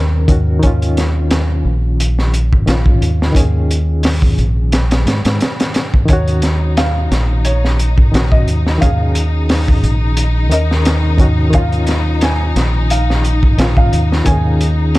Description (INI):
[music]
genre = trip hop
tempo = 88 BPM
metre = 4/4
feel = swing 55% on 16ths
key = unclear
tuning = A4 = 440 Hz
[part]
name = barky reed electric piano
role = accompaniment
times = 0.0-15.0 s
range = Eb3 to Bb4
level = -21 LUFS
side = left 1 dB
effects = tremolo, tape echo
[part]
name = deep dub fingered electric bass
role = bass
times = 0.0-15.0 s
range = Bb1 to Ab2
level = -14 LUFS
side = equal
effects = none
[part]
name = crunchy breakbeat drum kit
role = drums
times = 0.3-15.0 s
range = hi-hat, kick drum, snare drum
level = -15 LUFS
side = equal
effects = none
[part]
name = felt-muted upright piano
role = melody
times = 6.1-14.7 s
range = Db5 to Ab5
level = -24 LUFS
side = equal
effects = vintage 12-bit sampler grit, tape echo
[part]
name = rich studio string section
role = sustained chords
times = 6.1-15.0 s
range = Eb4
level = -24 LUFS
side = left 4 dB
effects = none
[sound]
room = small room ambience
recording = dark, warm production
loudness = -11 LUFS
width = side -19 dB against mid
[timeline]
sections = 0.0-15.0 A section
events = none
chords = 0.0 Ebm7; 0.6 Dbadd9; 6.1 Ebm7; 11.5 Dbadd9